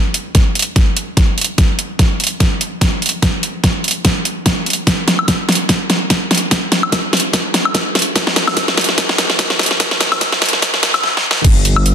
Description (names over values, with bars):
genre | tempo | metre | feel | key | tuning
future bass | 146 BPM | 4/4 | swing 55% on 16ths, half-time | unclear | A4 = 440 Hz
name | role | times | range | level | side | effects
dubstep drum kit | drums | 0.1-11.9 s | crash cymbal, hi-hat, snare drum, woodblock | -14 LUFS | equal | studio reverb
electronic kick drum | drums | 0.3-11.5 s | none | -14 LUFS | equal | studio reverb
fat analog bass | bass | 11.4-11.9 s | G1 | -14 LUFS | equal | tube saturation, sidechain pumping
room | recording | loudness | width
moderate digital room reverb, RT60 1.2 s, digital ambience | dense, heavily limited modern master, high-pass filter | -12 LUFS | side -8 dB against mid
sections
0.0-11.4 A section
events
build-up 0.0-11.4; drum fill 0.0-11.0, 11.0-11.4; filter sweep 0.0-11.4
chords
none